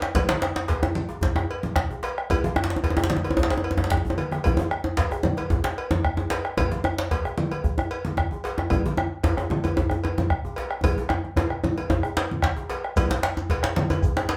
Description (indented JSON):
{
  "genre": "west african traditional, West African drum ensemble",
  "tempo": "112 BPM",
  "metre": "4/4",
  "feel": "straight",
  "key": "none",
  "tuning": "none",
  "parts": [
    { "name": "bombo", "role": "percussion", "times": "0.0-14.3 s", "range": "none", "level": "-29 LUFS", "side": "equal", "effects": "none" },
    { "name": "djembe", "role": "percussion", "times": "0.0-14.4 s", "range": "none", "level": "-28 LUFS", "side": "equal", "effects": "none" },
    { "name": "djembe", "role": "percussion", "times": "0.1-14.3 s", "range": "none", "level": "-34 LUFS", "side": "equal", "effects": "none" },
    { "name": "congas", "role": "percussion", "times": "0.2-13.9 s", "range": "none", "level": "-31 LUFS", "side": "equal", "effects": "none" },
    { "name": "cowbell", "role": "percussion", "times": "0.2-14.4 s", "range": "none", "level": "-35 LUFS", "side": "equal", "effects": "none" },
    { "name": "shekere", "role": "percussion", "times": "13.0-14.2 s", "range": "none", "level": "-35 LUFS", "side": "equal", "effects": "none" }
  ],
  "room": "wet studio reverb, RT60 0.6 s",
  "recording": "heard from further back in the room",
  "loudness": "-25 LUFS",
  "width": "mono",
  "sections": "0.0-13.0 A section; 13.0-14.4 B section",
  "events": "drum fill 3.8-4.4, 10.8-13.0",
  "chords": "none",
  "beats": "| 0.16 0.70 1.23 1.77 | 2.30 2.83 3.37 3.90 | 4.44 4.97 5.51 6.04 | 6.57 7.11 7.64 8.17 | 8.71 9.24 9.77 10.30 | 10.84 11.37 11.90 12.43 | 12.96 13.50 14.03"
}